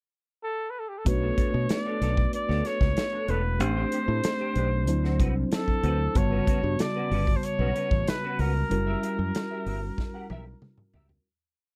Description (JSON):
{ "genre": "polished 1980s jazz-funk pop", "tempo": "94 BPM", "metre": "4/4", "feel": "straight", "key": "B minor", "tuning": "A4 = 440 Hz", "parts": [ { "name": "clear flugelhorn", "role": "melody", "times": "0.4-10.6 s", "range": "G4 to D5", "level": "-33 LUFS", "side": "equal", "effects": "none" }, { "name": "mellow tine electric piano", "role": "accompaniment", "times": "1.0-11.3 s", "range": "C#3 to A5", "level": "-33 LUFS", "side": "equal", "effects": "subtle chorus" }, { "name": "semi-hollow electric guitar", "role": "riff", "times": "1.1-11.1 s", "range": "C4 to F#5", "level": "-39 LUFS", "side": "equal", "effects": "ensemble chorus" }, { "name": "modern bright fingered electric bass", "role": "bass", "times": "1.1-11.2 s", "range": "E1 to B2", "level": "-29 LUFS", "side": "equal", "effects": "none" }, { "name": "modern studio drum kit", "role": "drums", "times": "1.1-11.2 s", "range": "hi-hat, kick drum, snare drum, toms", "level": "-30 LUFS", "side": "equal", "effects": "none" } ], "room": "light reverb", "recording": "dry, close 1970s-style studio recording", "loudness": "-27 LUFS", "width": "mono", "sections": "0.0-1.1 pickup bar; 1.1-11.3 verse", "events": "fade-out 8.7-11.3; drum fill 10.0-11.3", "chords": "0.0 N.C.; 1.1 Bm9; 3.6 Am11; 4.9 D13; 6.2 Gmaj9#11; 8.7 F#7b9", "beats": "0.42 | 1.06 1.70 2.34 2.97 | 3.61 4.25 4.88 5.52 | 6.16 6.79 7.43 8.07 | 8.71 9.34 9.98 10.62" }